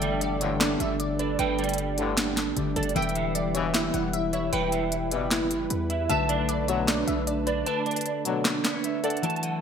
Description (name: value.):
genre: hip hop, trap.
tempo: 153 BPM.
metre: 4/4.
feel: half-time.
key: unclear.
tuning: A4 = 441 Hz.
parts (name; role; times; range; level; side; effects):
glassy wavetable pluck; second line; 0.0-9.2 s; A4 to F#5; -33 LUFS; left 2 dB; chorus, digital delay.
concert harp; accompaniment; 0.0-9.6 s; D3 to F#5; -33 LUFS; left 5 dB; low-pass filter.
warm analog pad; sustained chords; 0.0-9.6 s; F#3 to B4; -34 LUFS; equal; chorus.
mellow electric guitar; arpeggios; 0.0-9.6 s; D4 to A5; -29 LUFS; right 6 dB; ensemble chorus, low-pass filter, digital delay.
distorted 808-style bass; bass; 0.0-7.6 s; E1 to E2; -33 LUFS; equal; distortion.
trap drum kit; drums; 0.0-9.5 s; handclaps, hi-hat, snare drum; -28 LUFS; equal; gated reverb.
mellow brass ensemble; stabs; 0.4-8.6 s; G2 to G3; -32 LUFS; left 6 dB; none.
room: moderate lush hall reverb, RT60 1.8 s, digital ambience.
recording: bright 1980s-style digital production.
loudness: -24 LUFS.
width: side -7 dB against mid.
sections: 0.0-9.2 A section.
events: kick muted 7.7-9.2.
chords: 0.0 Gsus2; 3.0 Em; 6.1 Bm7.